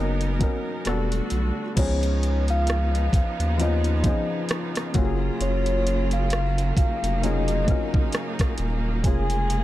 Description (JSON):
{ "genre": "contemporary R&B", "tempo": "66 BPM", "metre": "4/4", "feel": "swing 58% on 16ths", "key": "unclear", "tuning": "A4 = 435 Hz", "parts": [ { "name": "soft octave-layered synth lead", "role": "melody", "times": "0.0-9.6 s", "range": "Db5 to Ab5", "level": "-29 LUFS", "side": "left 1 dB", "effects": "chorus" }, { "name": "felt-muted upright piano", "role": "accompaniment", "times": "0.0-9.6 s", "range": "F3 to A#4", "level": "-30 LUFS", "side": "left 3 dB", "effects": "none" }, { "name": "bright studio string section", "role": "sustained chords", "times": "0.0-9.6 s", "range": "C#3 to Bb4", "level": "-31 LUFS", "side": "right 3 dB", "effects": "none" }, { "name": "saturated sub bass", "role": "bass", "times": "0.0-9.6 s", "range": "Eb1 to Eb2", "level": "-24 LUFS", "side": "equal", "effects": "none" }, { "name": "smooth R&B drum kit", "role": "drums", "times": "0.2-9.6 s", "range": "crash cymbal, hi-hat, kick drum, rim click", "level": "-24 LUFS", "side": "equal", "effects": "none" } ], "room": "digital ambience", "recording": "none", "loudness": "-21 LUFS", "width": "side -14 dB against mid", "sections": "0.0-1.8 A section; 1.8-9.6 B section", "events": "none", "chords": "0.0 Bmaj9; 0.9 Em11; 1.8 Db9; 5.0 Gbmaj7; 9.0 Bbm7/F", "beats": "0.86 | 1.77 2.68 3.59 4.50 | 5.41 6.32 7.22 8.13 | 9.04" }